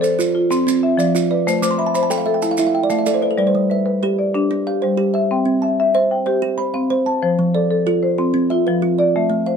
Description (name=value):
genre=southern african traditional, mbira-style interlocking cycle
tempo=125 BPM (dotted quarters)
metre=12/8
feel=straight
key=unclear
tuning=A4 = 440 Hz
part: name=kalimba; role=arpeggios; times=0.0-9.6 s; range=F3 to D6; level=-19 LUFS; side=right 6 dB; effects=none
part: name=marimba with medium mallets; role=arpeggios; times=0.0-9.6 s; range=F3 to A5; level=-18 LUFS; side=left 4 dB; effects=none
part: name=maracas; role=percussion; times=0.0-3.2 s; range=none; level=-30 LUFS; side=right 6 dB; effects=none
room=light reverb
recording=dark, warm production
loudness=-15 LUFS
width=side -6 dB against mid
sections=0.0-3.4 A section; 3.4-9.6 A section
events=kalimba fill 1.5-3.4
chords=0.0 F; 1.5 Am; 3.4 G; 5.3 C; 7.2 F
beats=0.04 0.52 0.99 | 1.47 1.95 2.43 2.91 | 3.39 3.87 4.35 4.83 | 5.31 5.79 6.27 6.75 | 7.23 7.71 8.20 8.68 | 9.16